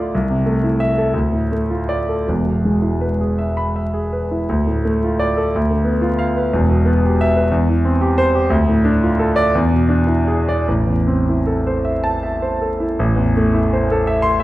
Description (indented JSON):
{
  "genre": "classical, romantic character piece for solo piano",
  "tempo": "50-62 BPM (dotted quarters)",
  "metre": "6/8",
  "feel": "rubato",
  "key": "A minor",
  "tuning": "A4 = 441 Hz",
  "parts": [
    { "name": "warm concert grand piano", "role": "solo", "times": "0.0-14.4 s", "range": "E1 to D6", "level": "-15 LUFS", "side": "equal", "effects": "none" }
  ],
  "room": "moderate recital hall reverb, RT60 1.7 s",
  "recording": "dark, warm production, vinyl crackle",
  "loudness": "-15 LUFS",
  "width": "side -16 dB against mid",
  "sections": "0.0-13.0 A section; 13.0-14.4 B section",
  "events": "none",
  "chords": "0.1 Am/C; 1.2 Dm; 2.3 E; 4.5 Dm; 5.5 Bdim/D; 6.5 Em; 7.5 C/E; 8.5 Dm; 9.5 E7; 10.7 Am"
}